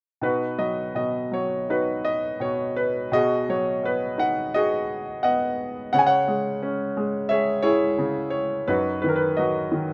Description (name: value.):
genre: classical, lyrical solo piano.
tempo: 81-88 BPM.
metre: 4/4.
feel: rubato.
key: B major.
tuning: A4 = 440 Hz.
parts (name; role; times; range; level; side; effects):
clear grand piano; solo; 0.2-9.9 s; F#2 to G#5; -24 LUFS; equal; none.
room: moderate studio reverb, RT60 0.6 s.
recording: none.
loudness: -24 LUFS.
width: mono.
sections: 0.2-9.9 A section.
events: none.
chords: 0.2 B; 3.1 G#m7/B; 5.9 C#m; 8.7 B/F#.